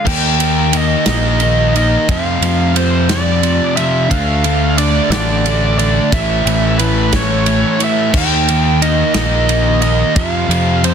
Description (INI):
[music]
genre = quiet-loud alternative rock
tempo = 60 BPM (dotted quarters)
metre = 6/8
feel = straight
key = unclear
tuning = A4 = 438 Hz
[part]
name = biting lead guitar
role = melody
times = 0.0-10.9 s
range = B4 to G5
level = -18 LUFS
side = right 3 dB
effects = overdrive, analog delay
[part]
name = fuzz guitar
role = riff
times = 0.1-10.9 s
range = F2 to Eb4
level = -16 LUFS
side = left 1 dB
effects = distortion
[part]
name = growling fingered electric bass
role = bass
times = 0.1-10.9 s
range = A1 to F2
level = -16 LUFS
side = equal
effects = overdrive
[part]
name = loose indie drum kit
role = drums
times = 0.1-10.9 s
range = crash cymbal, kick drum, ride cymbal, snare drum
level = -19 LUFS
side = right 1 dB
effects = none
[sound]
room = light reverb, small room reverb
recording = dense, heavily limited modern master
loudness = -11 LUFS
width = side -7 dB against mid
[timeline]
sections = 0.1-10.9 A section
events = none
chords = 0.1 Eb; 2.1 F5; 4.1 Dm; 6.1 A; 8.1 Eb; 10.2 F5